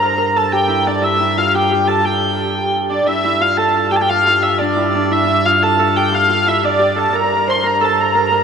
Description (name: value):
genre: medieval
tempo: 118 BPM (dotted quarters)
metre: 6/8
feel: straight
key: G dorian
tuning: A4 = 440 Hz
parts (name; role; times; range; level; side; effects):
- warm hurdy-gurdy; melody; 0.0-8.4 s; D5 to C6; -15 LUFS; equal; none
- Celtic harp; second line; 0.0-8.4 s; D4 to C5; -19 LUFS; right 1 dB; none
- warm viola da gamba; drone; 0.0-8.4 s; G2; -22 LUFS; equal; none
room: wet cathedral reverb, RT60 5.5 s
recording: minimal, uncompressed stereo recording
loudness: -13 LUFS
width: side -6 dB against mid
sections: 0.0-3.1 A section; 3.1-8.4 A section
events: none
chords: none